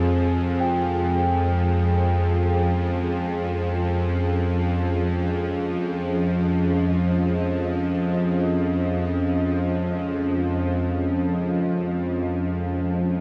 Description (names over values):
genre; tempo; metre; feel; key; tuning
dark ambient drone; free time; none; none; unclear; A4 = 445 Hz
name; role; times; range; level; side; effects
deep dark ambient pad; sustained chords; 0.0-13.2 s; F3 to F5; -27 LUFS; equal; chorus, built-in reverb
bowed-like drone; drone; 0.0-13.2 s; F2 to F3; -25 LUFS; equal; built-in reverb
quartz singing bowl; texture; 0.0-13.2 s; Ab4 to G5; -34 LUFS; equal; none
room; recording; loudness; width
wet huge ambient reverb, RT60 7.7 s; dark, warm production; -23 LUFS; mono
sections
0.0-13.2 A section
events
none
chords
0.0 Fm; 0.6 Dbsus2/F